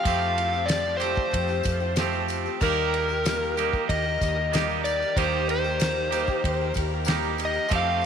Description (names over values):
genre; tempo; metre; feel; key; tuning
folk rock and heartland rock; 94 BPM; 4/4; straight; unclear; A4 = 440 Hz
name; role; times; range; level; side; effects
overdriven slide guitar; melody; 0.0-8.1 s; Bb4 to F5; -26 LUFS; left 2 dB; tape echo
picked twelve-string acoustic guitar; accompaniment; 0.0-8.1 s; Eb3 to Bb4; -33 LUFS; left 14 dB; none
tonewheel organ; sustained chords; 0.0-8.1 s; Eb4 to Bb5; -37 LUFS; equal; slow rotary speaker, overdrive, chorus vibrato
twangy electric guitar; riff; 0.0-8.1 s; Eb3 to G4; -29 LUFS; right 16 dB; none
hollow-body short-scale fingered electric bass; bass; 0.1-8.1 s; Eb2 to F2; -30 LUFS; equal; none
damped 70s drum kit; drums; 0.1-7.9 s; crash cymbal, kick drum, ride cymbal, snare drum; -30 LUFS; equal; none
tambourine; percussion; 0.1-8.1 s; none; -42 LUFS; left 15 dB; none
room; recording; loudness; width
moderate plate reverb, RT60 2.5 s; 1960s-style stereo with parts hard left and right; -22 LUFS; side -7 dB against mid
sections
0.0-8.1 A section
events
none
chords
0.0 Fadd9; 2.6 Eb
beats
| 0.05 0.69 1.33 1.97 | 2.61 3.25 3.89 4.52 | 5.16 5.80 6.44 7.07 | 7.71